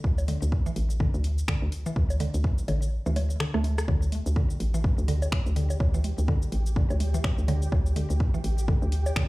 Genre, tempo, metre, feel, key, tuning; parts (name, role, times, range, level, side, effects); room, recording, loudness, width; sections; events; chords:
minimal techno; 125 BPM; 4/4; swing 58% on 16ths; A4 = 440 Hz
hollow knocking FM bass; bass; 0.0-9.1 s; A1 to D2; -26 LUFS; equal; sidechain pumping
electronic kick drum; drums; 0.0-9.3 s; -25 LUFS; equal; overdrive
house drum kit; drums; 0.2-9.3 s; cabasa, finger snaps, hi-hat, rim click; -36 LUFS; left 1 dB; overdrive
bongos and congas; percussion; 0.2-9.1 s; -37 LUFS; right 2 dB; dub echo
mallet-like synth pluck; riff; 0.3-9.2 s; D3 to A3; -33 LUFS; equal; chorus, sidechain pumping, ping-pong delay
flickering grainy texture; texture; 4.2-9.3 s; G4; -42 LUFS; right 3 dB; built-in reverb, sidechain pumping
little or no reverb; played on a big sound system in a bare room, large studio reverb; -24 LUFS; side -20 dB against mid
0.0-3.9 A section; 3.9-9.3 B section
kick drops out 2.9-3.9; drum fill 3.4-3.9; drop 3.9-9.3
0.0 D5